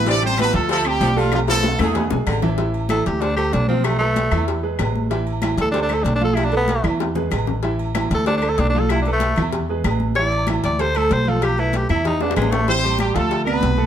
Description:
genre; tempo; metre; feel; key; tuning
latin, salsa; 190 BPM; 4/4; straight; A minor; A4 = 441 Hz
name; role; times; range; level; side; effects
warm horn section; melody; 0.0-2.1, 12.7-13.9 s; F3 to D5; -20 LUFS; right 1 dB; plate reverb
bright upright piano; accompaniment; 0.0-13.9 s; C3 to E6; -25 LUFS; right 2 dB; none
upright bass; bass; 0.0-13.9 s; A1 to E2; -22 LUFS; left 1 dB; none
bright saxophone section; second line; 0.1-2.4 s; C3 to A3; -26 LUFS; equal; none
congas; percussion; 0.1-13.9 s; none; -27 LUFS; equal; none
cowbell and bongos; percussion; 0.1-13.8 s; none; -28 LUFS; left 5 dB; none
agogo bells and timbales; percussion; 0.2-13.6 s; none; -30 LUFS; right 7 dB; none
claves; percussion; 0.4-13.6 s; none; -32 LUFS; left 6 dB; none
raspy tenor saxophone; melody; 2.9-12.7 s; G#3 to D5; -21 LUFS; equal; plate reverb
room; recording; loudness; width
moderate studio reverb, RT60 0.7 s; faint mains hum; -17 LUFS; side -9 dB against mid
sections
0.0-2.6 A section; 2.6-12.7 B section; 12.7-13.9 A section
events
drum fill 1.3-2.6, 6.7-7.6, 12.2-12.7; tenor saxophone solo 2.6-12.7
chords
0.1 Am7; 0.7 Dm7; 1.3 G13/B (rootless); 2.0 E7; 2.6 A5; 3.2 Dm7; 3.8 Fmaj7#11/B; 4.5 E; 5.1 A5; 5.7 Dm7; 6.4 Dm69/B (rootless); 7.0 E; 7.6 A5; 8.3 Dm7; 8.9 Dm69/B (rootless); 9.5 E; 10.2 A5; 10.8 Dm7; 11.4 G13/B; 12.1 E; 12.7 Am7; 13.3 Dm7

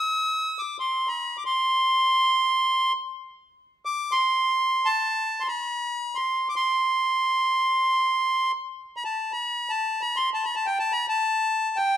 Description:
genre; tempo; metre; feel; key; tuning
Arabic maqam ensemble; free time; none; none; C maqam rast; A4 = 440 Hz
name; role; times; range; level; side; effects
accordion; solo; 0.0-12.0 s; G5 to E6-50c; -22 LUFS; equal; none
room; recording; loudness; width
moderate recital hall reverb, RT60 1.5 s; minimal, uncompressed stereo recording; -22 LUFS; side -10 dB against mid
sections
0.0-12.0 A section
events
none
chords
none

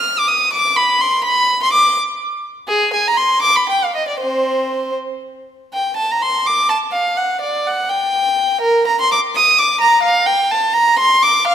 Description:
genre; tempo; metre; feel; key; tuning
classical, baroque-style suite movement for unaccompanied violin; 83 BPM (dotted quarters); 6/8; rubato; C minor, G minor from 5.7 s; A4 = 441 Hz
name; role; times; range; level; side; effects
rich violin; solo; 0.0-11.5 s; C4 to F6; -13 LUFS; equal; none
room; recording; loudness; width
moderate scoring stage reverb, RT60 1.6 s; none; -13 LUFS; side -9 dB against mid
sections
0.0-5.7 A section; 5.7-11.5 A section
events
none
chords
none

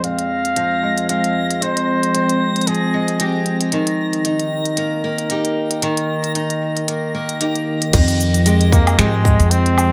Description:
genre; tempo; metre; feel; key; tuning
folktronica; 114 BPM; 4/4; swing 56% on 16ths; F minor; A4 = 440 Hz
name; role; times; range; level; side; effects
warm flugelhorn; melody; 0.0-3.5, 8.7-9.9 s; Ab3 to F5; -23 LUFS; equal; tape echo, plate reverb
warbly tape-like pad; sustained chords; 0.0-9.9 s; Eb3 to G5; -25 LUFS; equal; chorus, built-in reverb
picked steel-string acoustic guitar; arpeggios; 0.0-9.9 s; F2 to Ab4; -24 LUFS; equal; vintage 12-bit sampler grit, low-pass filter, tape echo, plate reverb
organic electronic drum kit; drums; 0.0-9.9 s; crash cymbal, finger snaps, hi-hat, shaker, woodblock; -24 LUFS; equal; overdrive
backwards swelling texture; texture; 0.2-7.9 s; Bb6; -31 LUFS; equal; built-in reverb
upright bass; bass; 7.9-9.9 s; F2 to Ab2; -18 LUFS; equal; none
electronic kick drum; drums; 7.9-9.4 s; none; -16 LUFS; equal; none
room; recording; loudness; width
moderate small room reverb, RT60 0.5 s; none; -18 LUFS; mono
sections
0.0-7.9 A section; 7.9-9.9 B section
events
filter sweep on steel-string acoustic guitar 0.0-7.9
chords
0.0 Fmadd9; 3.7 Eb; 7.9 Fmadd9

